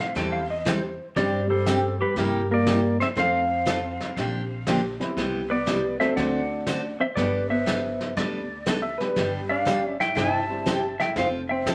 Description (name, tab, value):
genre	country, western swing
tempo	120 BPM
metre	4/4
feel	swing 67% on 8ths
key	C major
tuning	A4 = 441 Hz
part	clean lap steel guitar	melody	0.0-11.7 s	G4 to A5	-29 LUFS	equal	none
part	clean lap steel guitar	second line	0.0-1.1, 8.2-9.3 s	B4 to G5	-32 LUFS	equal	none
part	hollow-body jazz guitar	second line	0.0-11.7 s	G3 to E4	-31 LUFS	equal	none
part	vintage brush drum kit	drums	0.0-11.7 s	brushed snare drum, hi-hat, kick drum, snare drum	-33 LUFS	equal	none
part	picked steel-string acoustic guitar	accompaniment	0.1-11.7 s	C3 to A4	-30 LUFS	equal	none
part	upright bass	bass	0.2-11.7 s	F1 to G2	-35 LUFS	equal	none
part	dark upright piano	accompaniment	1.2-10.6 s	G3 to C5	-35 LUFS	equal	none
room	wet studio reverb, RT60 0.7 s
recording	vinyl crackle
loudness	-25 LUFS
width	mono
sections	0.0-11.7 A section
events	none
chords	0.0 Am7; 1.2 Gsus4; 2.2 C7/G; 3.2 F; 4.2 Bb6; 5.2 Cmaj7; 6.2 D7; 7.2 Gadd9; 9.2 G; 10.2 C/G; 11.2 F